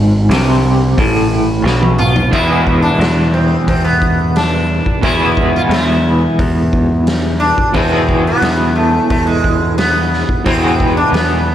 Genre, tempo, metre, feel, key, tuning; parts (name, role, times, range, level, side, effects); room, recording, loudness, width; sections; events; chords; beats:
psychedelic rock; 89 BPM; 4/4; straight; E major; A4 = 437 Hz
electric guitar at the edge of break-up; riff; 0.0-11.5 s; E2 to G#4; -15 LUFS; equal; tremolo, double-tracked left and right
growling picked electric bass; bass; 0.0-11.5 s; G#1 to E2; -16 LUFS; equal; overdrive
raw garage drum kit; drums; 0.3-11.3 s; crash cymbal, hi-hat, kick drum, snare drum, toms; -18 LUFS; equal
sitar; melody; 2.0-11.5 s; G#3 to F4; -17 LUFS; equal; slapback echo
light reverb, studio reverb; -11 LUFS; side -11 dB against mid
0.0-2.3 A section; 2.3-11.5 B section
drum fill 1.7-2.3
0.0 E (rootless); 2.3 E
0.30 0.98 1.65 | 2.33 3.00 3.67 4.35 | 5.03 5.70 6.38 7.06 | 7.74 8.41 9.09 9.77 | 10.45 11.13